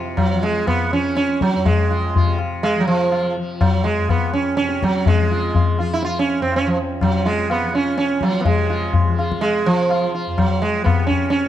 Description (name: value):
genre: indian classical, Hindustani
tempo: 124 BPM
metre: 7/4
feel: straight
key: F raga todi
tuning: A4 = 438 Hz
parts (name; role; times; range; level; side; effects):
- tanpura; drone; 0.0-11.5 s; F2 to F3; -28 LUFS; left 1 dB; none
- sitar; melody; 0.2-11.5 s; F3 to F4; -19 LUFS; right 3 dB; none
- tabla; percussion; 0.2-11.5 s; none; -20 LUFS; left 4 dB; none
room: moderate recital hall reverb, RT60 1.7 s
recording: dark, warm production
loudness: -16 LUFS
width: side -11 dB against mid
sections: 0.0-8.5 A section; 8.5-11.5 B section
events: speeding up 0.0-11.5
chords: none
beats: 0.18 0.67 1.17 | 1.66 2.15 2.64 3.13 3.61 4.10 4.59 | 5.08 5.56 6.05 6.53 7.02 7.50 7.98 | 8.46 8.94 9.42 9.90 10.38 10.86 11.34